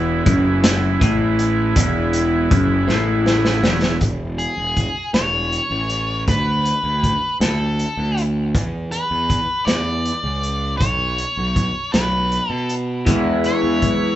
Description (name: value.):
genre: psychedelic rock.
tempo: 53 BPM (dotted quarters).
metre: 6/8.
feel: straight.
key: E mixolydian.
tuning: A4 = 441 Hz.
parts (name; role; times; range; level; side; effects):
combo organ; sustained chords; 0.0-4.0, 13.1-14.2 s; E3 to E4; -24 LUFS; right 3 dB; none.
electric guitar through a small old amp; riff; 0.0-4.0, 13.1-14.2 s; E2 to E4; -19 LUFS; left 1 dB; phaser.
fuzz picked electric bass; bass; 0.0-13.9 s; E1 to B2; -22 LUFS; equal; overdrive.
crunchy breakbeat drum kit; drums; 0.3-14.0 s; hi-hat, kick drum, snare drum; -20 LUFS; equal; none.
congas; percussion; 0.3-4.0, 13.1-14.1 s; none; -31 LUFS; left 9 dB; none.
octave-fuzz lead guitar; melody; 4.4-14.2 s; G#4 to D5; -22 LUFS; equal; distortion, digital delay.
room: light reverb.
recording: band playing live in one room, nothing above 8.0 kHz.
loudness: -16 LUFS.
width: side -13 dB against mid.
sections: 0.0-4.0 A section; 4.0-14.2 B section.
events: drum fill 2.9-4.0.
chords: 0.0 E; 6.3 D5; 8.5 E5; 10.8 Bsus2; 13.1 E.